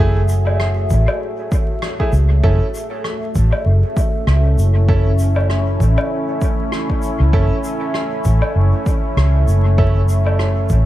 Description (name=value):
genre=ambient dub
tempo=98 BPM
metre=4/4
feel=swing 57% on 16ths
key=F# minor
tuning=A4 = 439 Hz
part: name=deep dark ambient pad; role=sustained chords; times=0.0-10.9 s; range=A3 to E5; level=-23 LUFS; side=equal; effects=chorus, built-in reverb
part: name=bright upright piano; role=stabs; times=0.0-10.0 s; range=A3 to A4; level=-27 LUFS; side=right 3 dB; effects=dub echo
part: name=vintage muted fingered electric bass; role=bass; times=0.0-10.9 s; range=F#1 to C#2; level=-14 LUFS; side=equal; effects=tube saturation
part: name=shaker, woodblock and rim click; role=drums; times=0.3-10.8 s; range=none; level=-27 LUFS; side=left 1 dB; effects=dub echo
part: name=electronic kick drum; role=drums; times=0.9-10.8 s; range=none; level=-18 LUFS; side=equal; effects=none
room=little or no reverb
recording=vinyl crackle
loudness=-14 LUFS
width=side -14 dB against mid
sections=0.0-10.9 A section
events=none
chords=0.0 F#m9